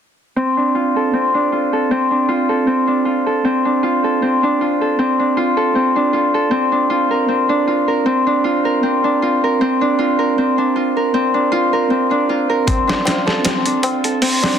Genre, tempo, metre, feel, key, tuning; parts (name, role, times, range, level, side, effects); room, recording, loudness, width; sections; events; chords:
trip hop; 78 BPM; 4/4; swing 54% on 16ths; D minor; A4 = 440 Hz
Celtic harp; arpeggios; 0.4-14.6 s; C4 to Bb4; -14 LUFS; equal; low-pass filter, tape echo
boom bap sampler-style drum kit; drums; 12.7-14.6 s; hi-hat, kick drum, snare drum; -18 LUFS; equal
tabla; percussion; 12.7-14.6 s; -26 LUFS; left 3 dB
moderate echo chamber reverb, RT60 2.3 s; dense, heavily limited modern master; -14 LUFS; side -8 dB against mid
0.4-14.6 A section
0.4 Dm7; 6.5 Bbadd9